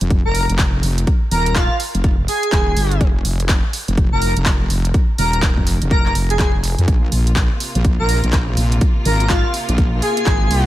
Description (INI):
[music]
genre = bass house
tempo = 124 BPM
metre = 4/4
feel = swing 62% on 16ths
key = F minor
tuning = A4 = 440 Hz
[part]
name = wobble bass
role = bass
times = 0.0-10.7 s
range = Eb1 to F2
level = -18 LUFS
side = equal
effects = chorus, sidechain pumping
[part]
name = house drum kit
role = drums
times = 0.0-10.6 s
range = handclaps, hi-hat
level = -24 LUFS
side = right 1 dB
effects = overdrive
[part]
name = electronic kick drum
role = drums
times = 0.1-10.4 s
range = none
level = -17 LUFS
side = equal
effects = overdrive
[part]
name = airy dreamy lead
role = melody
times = 0.3-10.7 s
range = F4 to Bb4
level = -22 LUFS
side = equal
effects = chorus, dub echo
[part]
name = rich symphonic string section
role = sustained chords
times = 6.9-10.7 s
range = C3 to F4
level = -27 LUFS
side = equal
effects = sidechain pumping
[sound]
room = little or no reverb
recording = none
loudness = -14 LUFS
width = side -14 dB against mid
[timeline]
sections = 0.0-10.7 A section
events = none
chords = 0.0 Fm; 6.9 Bbsus2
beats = 0.10 0.59 | 1.07 1.56 2.04 2.52 | 3.01 3.49 3.98 4.46 | 4.94 5.43 5.91 6.39 | 6.88 7.36 7.85 8.33 | 8.81 9.30 9.78 10.27